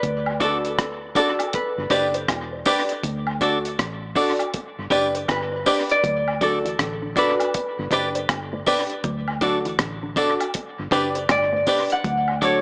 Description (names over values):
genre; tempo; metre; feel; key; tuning
roots reggae; 80 BPM; 4/4; swing 62% on 16ths; D major; A4 = 439 Hz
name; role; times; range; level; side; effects
concert harp; melody; 0.0-12.6 s; A4 to F#5; -23 LUFS; equal; tape echo
vintage muted fingered electric bass; bass; 0.0-12.6 s; E1 to D2; -31 LUFS; equal; none
deep reggae drum kit; drums; 0.0-12.6 s; hi-hat, kick drum, rim click; -27 LUFS; equal; dub echo
woodblock and tambourine; percussion; 0.3-12.6 s; none; -31 LUFS; equal; none
clean electric guitar; accompaniment; 0.4-12.6 s; D4 to D5; -24 LUFS; equal; tape echo
warm upright piano; stabs; 0.4-12.6 s; D4 to D5; -25 LUFS; equal; none
electric guitar with an envelope filter; arpeggios; 6.0-12.6 s; A2 to F#3; -34 LUFS; equal; none
room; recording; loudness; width
moderate spring reverb, RT60 2.8 s; echo-heavy mix, small speaker sound; -20 LUFS; side -40 dB against mid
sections
0.0-12.6 A section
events
none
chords
0.0 D; 1.5 G; 3.0 D; 4.5 G; 6.0 D; 7.5 G; 9.0 D; 10.5 G; 12.0 D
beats
| 0.03 0.78 1.53 2.29 | 3.04 3.79 4.54 5.29 | 6.04 6.79 7.54 8.29 | 9.04 9.79 10.55 11.30 | 12.05